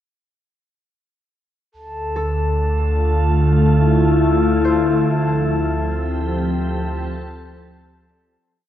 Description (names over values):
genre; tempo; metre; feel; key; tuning
ambient; 72 BPM; 4/4; straight; D minor; A4 = 439 Hz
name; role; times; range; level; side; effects
warm sub bass; bass; 1.7-8.4 s; D2; -22 LUFS; equal; none
glass harmonica; texture; 1.7-8.4 s; A4 to A5; -26 LUFS; left 1 dB; shimmer reverb
glassy FM pad; sustained chords; 2.2-8.4 s; D3 to A4; -18 LUFS; equal; ensemble chorus, built-in reverb, shimmer reverb
concert harp; arpeggios; 2.2-8.7 s; A4 to D5; -34 LUFS; equal; diffuse ambient delay, shimmer reverb
room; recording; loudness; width
wet concert hall reverb, RT60 2.2 s; none; -16 LUFS; side -11 dB against mid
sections
1.7-8.4 A section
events
fade-out on harp 1.7-8.4; filter sweep on ambient pad 1.7-8.4; fade-out 5.1-8.4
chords
1.7 Dm7; 5.1 F/D